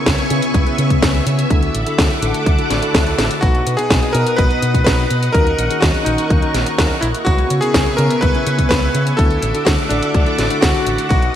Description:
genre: italo disco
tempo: 125 BPM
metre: 4/4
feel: straight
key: unclear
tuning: A4 = 440 Hz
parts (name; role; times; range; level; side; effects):
- string machine, full ensemble; sustained chords; 0.0-11.4 s; B3 to D#6; -21 LUFS; equal; ensemble chorus
- tine electric piano; stabs; 0.0-11.4 s; B2 to D5; -24 LUFS; left 2 dB; medium stereo tremolo
- fingered electric bass with an envelope filter; bass; 0.1-11.3 s; A1 to C#3; -20 LUFS; equal; tube saturation
- electronic kick drum; drums; 0.1-11.2 s; none; -17 LUFS; equal; none
- house drum kit; drums; 0.1-11.3 s; hi-hat, snare drum; -20 LUFS; equal; none
- bright electric grand piano; melody; 3.4-11.4 s; D4 to B4; -20 LUFS; left 1 dB; ping-pong delay
room: light reverb, digital ambience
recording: bright 1980s-style digital production, vinyl crackle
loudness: -13 LUFS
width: side -10 dB against mid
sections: 0.0-11.4 A section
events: drum fill 3.2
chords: 0.0 C#m7; 1.5 Dadd9; 3.4 B; 5.3 D#m7; 7.3 C#m7; 9.2 Dadd9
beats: 0.06 0.54 1.02 | 1.50 1.98 2.46 2.94 | 3.42 3.90 4.38 4.86 | 5.34 5.82 6.30 6.78 | 7.26 7.74 8.22 8.70 | 9.18 9.66 10.14 10.62 | 11.10

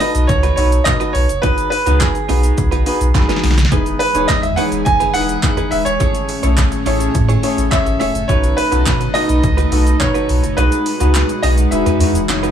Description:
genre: dance-pop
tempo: 105 BPM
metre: 4/4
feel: straight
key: E major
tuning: A4 = 438 Hz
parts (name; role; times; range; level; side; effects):
- clear concert grand piano; melody; 0.0-12.5 s; G#4 to G#5; -20 LUFS; right 1 dB; tape echo
- warm grand piano; accompaniment; 0.0-12.5 s; B3 to C#5; -22 LUFS; left 4 dB; none
- direct-recorded clean electric guitar; riff; 0.0-12.5 s; G#3 to C#5; -24 LUFS; right 8 dB; wide subtle chorus
- punchy analog drum machine; drums; 0.0-12.5 s; handclaps, hi-hat, kick drum, shaker, snare drum; -19 LUFS; equal; overdrive
- warm sub bass; bass; 0.1-12.5 s; E1 to B2; -16 LUFS; equal; sidechain pumping
- group handclap; percussion; 0.9-12.4 s; none; -27 LUFS; right 12 dB; none
- airy breathy pad; sustained chords; 3.7-12.5 s; A2 to G#4; -22 LUFS; equal; chorus, sidechain pumping
room: little or no reverb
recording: none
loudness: -13 LUFS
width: side -9 dB against mid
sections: 0.0-12.5 A section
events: drum fill 3.1-3.7; kick muted 10.6-12.5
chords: 0.0 B7; 1.4 G#m7/B; 3.7 Emaj7; 6.0 Amaj7; 8.3 B7; 10.6 G#m7/B; 11.7 Emaj9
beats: 0.29 0.86 | 1.44 2.01 2.58 3.15 | 3.72 4.29 4.86 5.43 | 6.01 6.58 7.15 7.72 | 8.29 8.86 9.44 10.01 | 10.58 11.15 11.72 12.29

